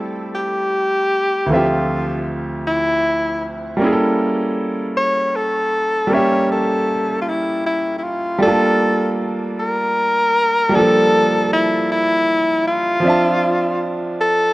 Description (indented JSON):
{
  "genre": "R&B",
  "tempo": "52 BPM (dotted quarters)",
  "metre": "6/8",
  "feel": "straight",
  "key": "unclear",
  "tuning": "A4 = 439 Hz",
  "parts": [
    { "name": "bright concert grand piano", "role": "accompaniment", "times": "0.0-14.5 s", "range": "D2 to A5", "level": "-19 LUFS", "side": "right 1 dB", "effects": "none" },
    { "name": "breathy tenor saxophone", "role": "melody", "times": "0.4-14.5 s", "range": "E4 to C#5", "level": "-17 LUFS", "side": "left 1 dB", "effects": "none" }
  ],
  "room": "light reverb, small room ambience",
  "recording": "worn, warbling old tape, cassette tape, warbly pitch drift",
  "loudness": "-15 LUFS",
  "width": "side -19 dB against mid",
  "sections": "0.0-8.4 A section; 8.4-14.5 B section",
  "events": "none",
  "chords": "0.0 Am7; 1.5 Dm11; 3.8 A7b9; 8.4 Gm9; 13.0 Dm9"
}